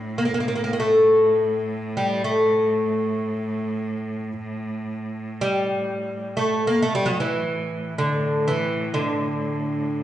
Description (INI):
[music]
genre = Turkish makam ensemble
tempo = free time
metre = none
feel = none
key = A makam hicaz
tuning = A4 = 440 Hz
[part]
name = oud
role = melody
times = 0.0-10.0 s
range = D3 to D4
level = -21 LUFS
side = equal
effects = none
[part]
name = clear cello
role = drone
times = 0.0-10.0 s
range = A2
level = -30 LUFS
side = equal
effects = none
[sound]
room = wet recital hall reverb, RT60 1.4 s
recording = recorded in a church or concert hall, nothing above 10.3 kHz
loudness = -20 LUFS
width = side -12 dB against mid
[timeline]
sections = 0.0-10.0 A section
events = none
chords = none